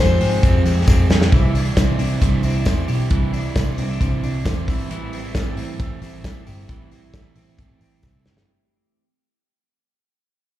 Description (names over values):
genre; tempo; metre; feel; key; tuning
jangly indie pop; 134 BPM; 4/4; straight; C major; A4 = 440 Hz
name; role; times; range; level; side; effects
warm violin; melody; 0.0-0.9 s; C5; -25 LUFS; left 4 dB; slapback echo, ping-pong delay
overdriven electric guitar; accompaniment; 0.0-8.5 s; A2 to G4; -27 LUFS; right 6 dB; spring reverb
twelve-string electric guitar; arpeggios; 0.0-9.0 s; E3 to G4; -28 LUFS; left 3 dB; warbly pitch drift, slapback echo
vintage muted picked electric bass; bass; 0.0-8.4 s; G1 to Ab2; -20 LUFS; equal; none
loose indie drum kit; drums; 0.2-8.5 s; hi-hat, kick drum, ride cymbal, snare drum; -19 LUFS; equal; none
tambourine; percussion; 0.2-8.4 s; none; -44 LUFS; left 4 dB; none
room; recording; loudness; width
light reverb, studio reverb; live gig heard through the venue's PA, club reverb; -16 LUFS; side -14 dB against mid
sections
0.0-1.3 A section; 1.3-8.5 B section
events
drum fill 0.9-1.3, 8.0-8.5; fade-out 1.3-8.5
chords
0.0 Fmadd9; 1.3 Cadd9; 4.7 Am7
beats
0.43 0.88 | 1.32 1.77 2.22 2.66 | 3.11 3.56 4.00 4.45 | 4.90 5.35 5.79 6.24 | 6.69 7.14 7.59 8.04